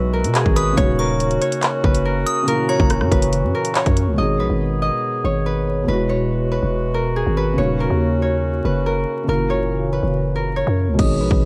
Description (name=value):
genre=hip hop, drill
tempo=141 BPM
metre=4/4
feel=half-time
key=G# minor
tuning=A4 = 439 Hz
part: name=Celtic harp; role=melody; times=0.0-11.5 s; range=G#4 to D#5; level=-25 LUFS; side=equal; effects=low-pass filter
part: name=delicate synth tine bell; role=second line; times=0.0-4.1 s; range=A#5 to E6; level=-29 LUFS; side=equal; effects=chorus, phaser, tape echo
part: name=felt-muted upright piano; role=accompaniment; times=0.0-11.5 s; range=A#2 to G#4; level=-27 LUFS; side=equal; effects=low-pass filter
part: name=dark woodwind section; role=sustained chords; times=0.0-11.0 s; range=A#2 to G#4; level=-30 LUFS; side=equal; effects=none
part: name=growling 808-style bass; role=bass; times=0.0-11.5 s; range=D#1 to B2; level=-23 LUFS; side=equal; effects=none
part: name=drill drum kit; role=drums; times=0.2-4.1, 11.0-11.4 s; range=crash cymbal, handclaps, hi-hat, kick drum, rim click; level=-21 LUFS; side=equal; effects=vintage 12-bit sampler grit
room=light reverb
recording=vinyl crackle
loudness=-19 LUFS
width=mono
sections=0.0-4.2 A section; 4.2-11.0 B section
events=none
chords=0.0 Eadd9; 0.8 D#m7; 2.5 F#7; 4.2 G#m; 5.9 Eadd9; 7.6 D#m7; 9.3 F#7